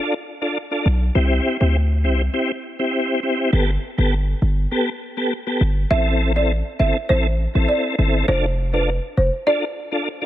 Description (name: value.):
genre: dancehall.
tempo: 101 BPM.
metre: 4/4.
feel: straight.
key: A minor.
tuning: A4 = 440 Hz.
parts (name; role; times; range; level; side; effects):
tonewheel organ; accompaniment; 0.0-10.3 s; B3 to A4; -22 LUFS; left 1 dB; chorus vibrato, fast rotary speaker.
hard-hitting 808-style bass; bass; 0.9-9.3 s; F1 to D2; -18 LUFS; equal; none.
folk marimba with medium hard mallets; melody; 5.9-9.9 s; B4 to E5; -22 LUFS; right 1 dB; tape echo.
room: small room reverb.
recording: none.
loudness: -18 LUFS.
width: side -13 dB against mid.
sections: 0.0-5.9 A section; 5.9-10.3 B section.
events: none.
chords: 0.0 F6; 1.2 C; 3.5 Gadd9; 5.9 Am; 8.3 F6.